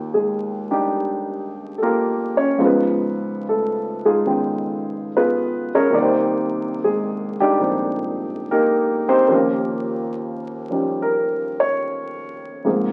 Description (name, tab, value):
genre	jazz ballad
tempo	72 BPM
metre	4/4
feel	swing 69% on 8ths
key	Eb major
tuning	A4 = 439 Hz
part	dark grand piano	solo	0.0-12.9 s	C2 to G5	-21 LUFS	equal	none
room	wet studio reverb, RT60 0.7 s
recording	very old 78 rpm record, vinyl crackle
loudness	-21 LUFS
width	mono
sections	0.0-12.9 A section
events	none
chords	0.0 Ebmaj9; 2.6 Db9; 5.9 Cm9; 9.3 Eb9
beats	0.08 0.92 1.75 | 2.59 3.42 4.26 5.09 | 5.93 6.77 7.60 8.44 | 9.28 10.12 10.96 11.80 | 12.65